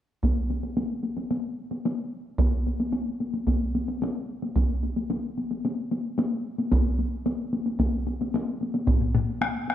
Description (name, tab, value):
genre	japanese traditional, taiko drum ensemble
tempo	111 BPM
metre	4/4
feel	straight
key	none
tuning	none
part	solo taiko drums	percussion	0.2-9.0 s	none	-26 LUFS	right 2 dB	none
part	taiko ensemble	percussion	0.2-9.7 s	none	-27 LUFS	left 2 dB	none
part	solo taiko drums	percussion	8.9-9.7 s	none	-26 LUFS	left 5 dB	none
room	light reverb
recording	close, detailed microphones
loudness	-25 LUFS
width	side -11 dB against mid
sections	0.2-8.9 A section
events	none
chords	none